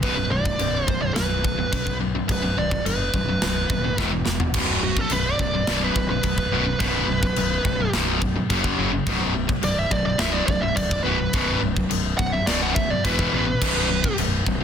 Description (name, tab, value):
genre	heavy metal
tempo	106 BPM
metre	4/4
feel	straight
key	B minor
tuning	A4 = 442 Hz
part	high-gain lead guitar	melody	0.0-14.1 s	F#4 to F#5	-26 LUFS	right 2 dB	distortion
part	distorted electric guitar	riff	0.0-14.6 s	B1 to F#3	-25 LUFS	left 1 dB	overdrive
part	fuzz fingered electric bass	bass	0.0-14.6 s	B0 to B1	-27 LUFS	equal	overdrive
part	tight metal drum kit	drums	0.0-14.6 s	china cymbal, crash cymbal, kick drum, snare drum, toms	-25 LUFS	equal	soft clipping on kick
room	light reverb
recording	dense, heavily limited modern master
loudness	-20 LUFS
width	side -8 dB against mid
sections	0.0-4.5 A section; 4.5-14.6 B section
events	drum fill 4.0-4.5; lead electric guitar solo 4.5-14.6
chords	0.0 Bm; 4.0 E5; 4.5 B5; 8.5 F#5; 9.1 B5; 13.0 E5; 13.6 B5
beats	| 0.03 0.59 1.16 1.73 | 2.29 2.85 3.42 3.98 | 4.55 5.11 5.68 6.24 | 6.80 7.37 7.94 8.50 | 9.07 9.63 10.20 10.77 | 11.34 11.90 12.47 13.04 | 13.61 14.18